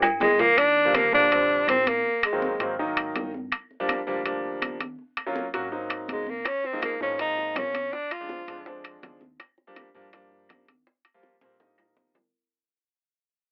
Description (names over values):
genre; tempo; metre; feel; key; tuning
Afro-Cuban jazz; 163 BPM; 4/4; straight; Eb major; A4 = 440 Hz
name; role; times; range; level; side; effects
upright bass; bass; 0.0-12.3 s; Ab1 to Ab2; -47 LUFS; equal; none
claves; percussion; 0.0-12.0 s; none; -35 LUFS; equal; none
congas; percussion; 0.0-12.3 s; none; -41 LUFS; equal; none
timbales and agogo bells; percussion; 0.0-12.2 s; none; -29 LUFS; equal; none
breathy tenor saxophone; melody; 0.2-2.8, 6.1-8.7 s; Ab3 to F4; -25 LUFS; equal; none
cowbell and bongos; percussion; 0.2-0.6, 6.5-12.2 s; none; -43 LUFS; equal; none
clear grand piano; accompaniment; 0.9-12.1 s; D3 to Gb4; -33 LUFS; equal; none
room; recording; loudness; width
light reverb; telephone sound; -25 LUFS; mono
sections
0.6-12.3 A section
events
drum fill 0.0-0.6, 11.4-12.3; fade-out 0.6-12.3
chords
0.0 Eb; 0.6 Ebmaj7; 2.0 Ab9; 3.5 Gm7; 5.0 Ab13sus4; 5.7 Ab9; 6.5 Db6; 7.9 Fm6; 9.4 Ebmaj7